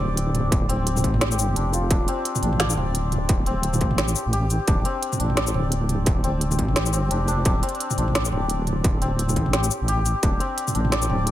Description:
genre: half-time drum and bass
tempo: 173 BPM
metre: 4/4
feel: swing 58% on 16ths, half-time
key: D minor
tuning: A4 = 440 Hz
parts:
  - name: santur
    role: arpeggios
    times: 0.0-11.3 s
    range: C4 to D5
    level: -27 LUFS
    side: left 2 dB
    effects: ping-pong delay
  - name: deep soft wobble bass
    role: bass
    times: 0.0-11.3 s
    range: D1 to A1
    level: -23 LUFS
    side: equal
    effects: chorus, tube saturation
  - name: organic electronic drum kit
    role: drums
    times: 0.0-11.3 s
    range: hi-hat, shaker, snare drum, toms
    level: -26 LUFS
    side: right 1 dB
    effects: overdrive
  - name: electronic kick drum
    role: drums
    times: 0.5-10.3 s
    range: none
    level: -22 LUFS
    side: equal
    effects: distortion
room: little or no reverb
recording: none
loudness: -20 LUFS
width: side -13 dB against mid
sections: 0.0-11.3 A section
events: none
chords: 0.0 D5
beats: 0.17 | 0.52 0.86 1.21 1.56 | 1.91 2.25 2.60 2.94 | 3.29 3.64 3.98 4.33 | 4.68 5.03 5.37 5.72 | 6.07 6.41 6.76 7.11 | 7.45 7.80 8.15 8.49 | 8.84 9.19 9.54 9.88 | 10.23 10.57 10.92 11.27

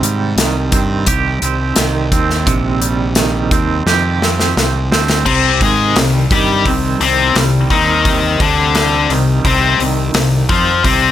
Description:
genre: quiet-loud alternative rock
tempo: 86 BPM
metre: 4/4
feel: straight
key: C minor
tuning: A4 = 439 Hz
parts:
  - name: twangy electric guitar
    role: arpeggios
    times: 0.0-11.1 s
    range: C3 to G4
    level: -19 LUFS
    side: right 7 dB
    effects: tremolo, digital delay
  - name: fuzz fingered electric bass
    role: bass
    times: 0.0-11.1 s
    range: Bb1 to Ab2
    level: -17 LUFS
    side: equal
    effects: overdrive
  - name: big rock drum kit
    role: drums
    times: 0.0-11.0 s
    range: crash cymbal, hi-hat, kick drum, snare drum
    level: -17 LUFS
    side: equal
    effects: none
  - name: tight distorted guitar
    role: riff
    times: 5.3-11.1 s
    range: C3 to Ab4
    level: -13 LUFS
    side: left 5 dB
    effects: distortion
room: light reverb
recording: none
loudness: -11 LUFS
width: side -11 dB against mid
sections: 0.0-5.3 A section; 5.3-11.1 B section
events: drum fill 3.9-5.3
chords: 0.0 Cm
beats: 0.39 1.08 1.78 | 2.48 3.18 3.87 4.57 | 5.27 5.97 6.66 7.36 | 8.06 8.76 9.46 10.15 | 10.85

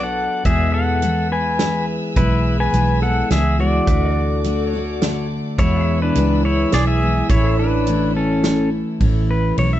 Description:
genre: honky-tonk and classic country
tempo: 105 BPM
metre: 3/4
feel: straight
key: A major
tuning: A4 = 439 Hz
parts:
  - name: pedal steel guitar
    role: melody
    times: 0.0-9.8 s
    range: C#4 to G#5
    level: -21 LUFS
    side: left 1 dB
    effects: none
  - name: picked steel-string acoustic guitar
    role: accompaniment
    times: 0.0-9.8 s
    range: E2 to G#4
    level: -21 LUFS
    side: left 2 dB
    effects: none
  - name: pedal steel guitar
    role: sustained chords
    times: 0.0-9.0 s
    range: G#4 to G#5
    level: -34 LUFS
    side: right 1 dB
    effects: none
  - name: warm chamber violin section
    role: sustained chords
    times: 0.0-9.0 s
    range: A4 to E6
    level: -33 LUFS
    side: right 2 dB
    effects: none
  - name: vintage muted fingered electric bass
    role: bass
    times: 0.0-9.8 s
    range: A1 to E2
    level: -20 LUFS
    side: right 1 dB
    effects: none
  - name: natural country drum kit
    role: drums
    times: 0.5-9.7 s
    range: hi-hat, kick drum, ride cymbal, snare drum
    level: -20 LUFS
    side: right 1 dB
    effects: none
room: little or no reverb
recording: dark, warm production, nothing above 8.0 kHz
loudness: -16 LUFS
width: side -12 dB against mid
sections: 0.0-9.0 A section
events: none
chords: 0.5 E; 3.9 D; 5.6 E; 7.3 A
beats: | 0.46 1.03 1.60 | 2.17 2.74 3.31 | 3.88 4.45 5.02 | 5.59 6.16 6.73 | 7.30 7.87 8.44 | 9.01 9.58

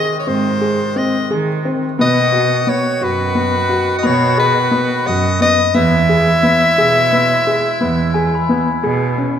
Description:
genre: contemporary instrumental, chamber music in an uneven meter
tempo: 176 BPM (eighths)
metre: 11/8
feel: straight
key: E major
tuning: A4 = 441 Hz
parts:
  - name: bright soprano saxophone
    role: melody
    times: 0.0-8.8 s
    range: B4 to E5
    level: -16 LUFS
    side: left 2 dB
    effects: none
  - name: clear woodwind section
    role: sustained chords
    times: 0.0-9.4 s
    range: B#2 to F#4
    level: -23 LUFS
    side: equal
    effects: none
  - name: felt-muted upright piano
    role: arpeggios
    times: 0.0-9.4 s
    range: B3 to G#4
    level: -19 LUFS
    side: left 1 dB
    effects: none
  - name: dark cello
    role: bass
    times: 0.0-9.4 s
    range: E2 to D#3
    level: -19 LUFS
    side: right 4 dB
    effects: none
  - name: glockenspiel with rubber mallets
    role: texture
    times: 0.0-9.4 s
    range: G#5 to D#6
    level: -24 LUFS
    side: left 7 dB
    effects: none
room: moderate concert hall reverb, RT60 2.2 s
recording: minimal, uncompressed stereo recording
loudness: -12 LUFS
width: side -8 dB against mid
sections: 0.0-9.4 A section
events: none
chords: 0.0 G#; 2.0 B; 5.7 E6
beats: 0.28 0.62 0.96 1.30 1.64 | 1.98 2.33 2.67 3.01 3.35 3.69 4.03 4.38 4.72 5.06 5.40 | 5.74 6.08 6.43 6.77 7.11 7.45 7.80 8.14 8.48 8.82 9.17

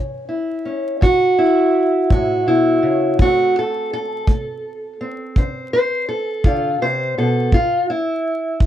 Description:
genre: acoustic country blues, solo or duo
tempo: 56 BPM (dotted quarters)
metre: 12/8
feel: straight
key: D mixolydian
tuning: A4 = 435 Hz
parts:
  - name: fingerpicked steel-string acoustic guitar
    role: melody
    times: 0.0-8.7 s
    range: A2 to C5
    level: -17 LUFS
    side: equal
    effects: none
  - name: kick drum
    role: drums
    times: 1.0-8.7 s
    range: none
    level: -17 LUFS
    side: equal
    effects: none
room: moderate studio reverb, RT60 0.5 s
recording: dark, warm production, vinyl crackle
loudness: -15 LUFS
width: side -11 dB against mid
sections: 0.0-8.7 A section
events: none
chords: 0.0 A; 3.2 D5; 7.5 A5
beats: 1.03 2.11 | 3.19 4.28 5.36 6.44 | 7.52 8.60

